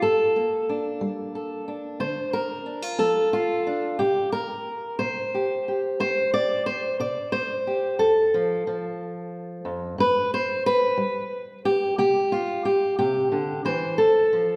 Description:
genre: folk, solo fingerstyle acoustic guitar.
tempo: 60 BPM (dotted quarters).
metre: 6/8.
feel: straight.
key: unclear.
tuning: A4 = 439 Hz.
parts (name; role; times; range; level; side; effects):
fingerpicked steel-string acoustic guitar; solo; 0.0-14.6 s; F2 to D5; -24 LUFS; equal; none.
room: wet recital hall reverb, RT60 1.8 s.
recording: recorded in a church or concert hall.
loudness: -24 LUFS.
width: mono.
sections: 0.0-14.0 A section.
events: none.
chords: 0.0 Gmadd9; 2.0 Dm; 4.0 N.C.; 5.0 C; 8.0 N.C.; 12.0 Cadd9; 14.0 N.C..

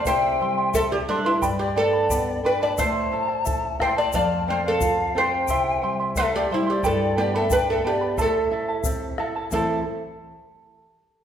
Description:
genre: andean folk, Andean ensemble.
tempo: 89 BPM.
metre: 2/4.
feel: straight.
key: A minor.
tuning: A4 = 443 Hz.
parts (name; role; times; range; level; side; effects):
oud; melody; 0.0-9.8 s; D4 to D5; -24 LUFS; right 2 dB; none.
pan flute; second line; 0.0-9.8 s; E4 to A5; -26 LUFS; left 5 dB; none.
charango; accompaniment; 0.0-9.8 s; E4 to C6; -28 LUFS; right 3 dB; none.
nylon-string guitar; accompaniment; 0.0-9.8 s; F2 to A4; -30 LUFS; left 1 dB; none.
bombo; percussion; 0.1-9.8 s; none; -31 LUFS; left 1 dB; none.
egg shaker; percussion; 0.1-9.8 s; none; -36 LUFS; left 7 dB; none.
room: wet recital hall reverb, RT60 1.4 s.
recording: recorded in a church or concert hall.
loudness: -20 LUFS.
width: side -9 dB against mid.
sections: 0.0-9.5 A section; 9.5-10.9 B section.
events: none.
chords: 0.1 C; 1.4 G; 2.8 Am; 4.1 F; 5.5 C; 6.8 G; 8.2 Am.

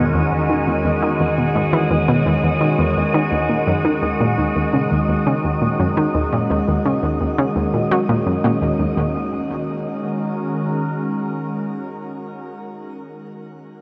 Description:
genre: ambient, sequencer-driven space music.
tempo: 85 BPM.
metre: 4/4.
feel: straight.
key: Eb phrygian.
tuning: A4 = 436 Hz.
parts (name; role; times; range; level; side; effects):
evolving wavetable pad; sustained chords; 0.0-12.6 s; E2 to Bb4; -23 LUFS; equal; phaser, built-in reverb, shimmer reverb.
analog pluck; riff; 0.0-9.3 s; Eb2 to Gb3; -22 LUFS; equal; chorus, tape echo.
wind-like tuned noise texture; texture; 0.0-9.0 s; Eb5; -29 LUFS; equal; built-in reverb, shimmer reverb.
room: wet huge ambient reverb, RT60 8.3 s.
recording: none.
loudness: -19 LUFS.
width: mono.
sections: 0.0-9.0 A section; 9.0-11.8 B section.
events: none.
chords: 0.0 Eadd9; 3.3 Ebm.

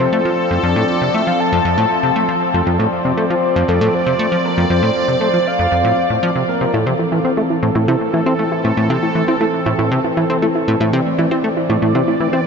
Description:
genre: ambient, sequencer-driven space music.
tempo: 118 BPM.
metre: 4/4.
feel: straight.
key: F major.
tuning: A4 = 442 Hz.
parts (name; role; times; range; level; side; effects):
soft octave-layered synth lead; melody; 0.0-6.7 s; A4 to A5; -19 LUFS; left 1 dB; chorus, analog delay.
sweeping resonant pad; sustained chords; 0.0-12.5 s; E3 to D5; -18 LUFS; equal; chorus.
plucky analog bass; riff; 0.0-12.4 s; F2 to C4; -18 LUFS; equal; vintage 12-bit sampler grit, analog delay.
soft round pluck; arpeggios; 6.7-12.4 s; E4; -22 LUFS; moving between left 5 dB and right 5 dB; chorus, auto-pan, analog delay.
room: wet huge ambient reverb, RT60 7.2 s.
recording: nothing above 7.9 kHz.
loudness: -14 LUFS.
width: side -6 dB against mid.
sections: 0.0-12.5 A section.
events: none.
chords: 0.0 F; 6.7 Am.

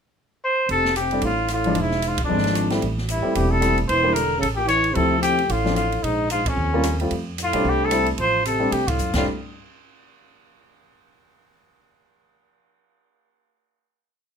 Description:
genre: jazz, small-group swing and bop.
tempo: 224 BPM.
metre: 4/4.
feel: swing 58% on 8ths.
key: F major.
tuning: A4 = 440 Hz.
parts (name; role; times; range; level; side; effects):
warm trumpet; melody; 0.4-9.3 s; Db4 to C#5; -22 LUFS; left 2 dB; none.
breathy trombone; second line; 0.7-9.2 s; F2 to F3; -27 LUFS; right 3 dB; none.
upright bass; bass; 0.7-9.2 s; E1 to C3; -26 LUFS; equal; none.
open jazz drum kit; drums; 0.7-9.2 s; crash cymbal, hi-hat, kick drum, ride cymbal, rim click, snare drum; -30 LUFS; right 1 dB; none.
warm concert grand piano; accompaniment; 1.1-9.3 s; F3 to F4; -24 LUFS; left 1 dB; none.
room: moderate studio reverb, RT60 0.7 s.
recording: minimal, uncompressed stereo recording.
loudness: -19 LUFS.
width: side -7 dB against mid.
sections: 0.0-0.7 pickup bar; 0.7-9.3 A section; 9.3-10.3 final hit.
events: band accent 2.2, 6.4, 8.9.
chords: 0.0 N.C.; 0.7 F69; 1.8 E7b9; 2.8 Am7; 3.9 Em7b5; 4.4 A; 5.0 Dm9; 6.0 Bb7(no3); 6.6 Eb9; 7.1 F69; 9.3 N.C..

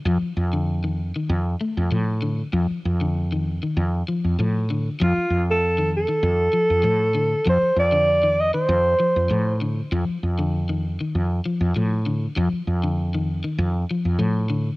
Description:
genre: afrobeat.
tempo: 98 BPM.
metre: 4/4.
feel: straight.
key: F mixolydian.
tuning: A4 = 439 Hz.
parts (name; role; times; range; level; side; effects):
electric guitar at the edge of break-up; arpeggios; 0.1-14.8 s; D3 to A3; -26 LUFS; left 2 dB; spring reverb, cassette tape.
woody fretless electric bass; bass; 0.1-14.7 s; F2 to A2; -22 LUFS; equal; none.
mellow alto saxophone; melody; 5.0-9.6 s; F4 to Eb5; -19 LUFS; right 1 dB; cassette tape.
room: studio reverb.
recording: home recording on cassette.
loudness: -19 LUFS.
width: side -21 dB against mid.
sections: 0.0-14.8 A section.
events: none.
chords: 0.0 F7.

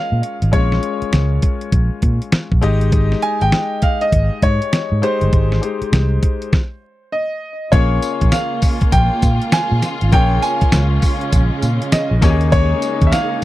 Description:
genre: R&B, new jack swing.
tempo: 100 BPM.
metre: 4/4.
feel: swing 64% on 16ths.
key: Bb dorian.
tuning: A4 = 441 Hz.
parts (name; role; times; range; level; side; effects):
bright concert grand piano; melody; 0.0-13.4 s; C5 to Ab5; -21 LUFS; equal; tape echo.
bright grand piano; accompaniment; 0.0-13.4 s; Ab3 to Ab5; -24 LUFS; left 6 dB; none.
fingered electric bass; bass; 0.1-13.1 s; G1 to Bb2; -16 LUFS; equal; none.
clean 12-bit digital drum machine; drums; 0.2-13.3 s; hi-hat, kick drum, snare drum, tambourine; -16 LUFS; equal; none.
muted studio string section; sustained chords; 7.7-13.4 s; Db3 to F4; -24 LUFS; right 2 dB; none.
room: little or no reverb.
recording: dry, close 1970s-style studio recording.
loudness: -14 LUFS.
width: side -16 dB against mid.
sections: 0.0-7.7 A section; 7.7-13.4 B section.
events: stop 6.5-7.7.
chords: 0.0 Bbm7; 2.6 Abmaj7; 7.7 Bbm7; 12.2 Eb7sus4.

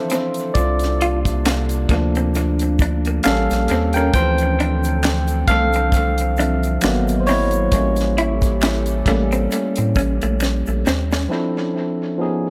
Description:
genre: R&B, neo-soul.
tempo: 67 BPM.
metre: 4/4.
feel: swing 57% on 16ths.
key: D minor.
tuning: A4 = 440 Hz.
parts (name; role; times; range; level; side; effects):
barky tine electric piano; accompaniment; 0.0-12.5 s; E3 to G5; -23 LUFS; equal; overdrive, tape echo.
warbly tape-like pad; sustained chords; 0.0-11.3 s; C3 to D#5; -32 LUFS; equal; chorus, built-in reverb.
electric guitar through a small old amp; second line; 0.1-11.2 s; A3 to F4; -28 LUFS; equal; tremolo, tape echo.
tight funk drum kit; drums; 0.1-11.3 s; finger snaps, hi-hat, kick drum, snare drum; -25 LUFS; equal; tape echo.
egg shaker and finger snaps; percussion; 0.1-11.3 s; none; -36 LUFS; equal; tape echo.
round analog bass; bass; 0.6-11.3 s; G#1 to A2; -23 LUFS; equal; none.
room: light reverb.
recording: echo-heavy mix.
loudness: -19 LUFS.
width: mono.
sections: 0.0-11.3 A section; 11.3-12.5 B section.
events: tine electric piano solo 0.0-11.3; drum fill 10.4-11.3.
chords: 0.0 Dm9; 0.6 C9sus4; 3.2 A7b9; 4.1 Dm9; 6.8 G#m9; 7.7 A7b9; 11.3 Dm7.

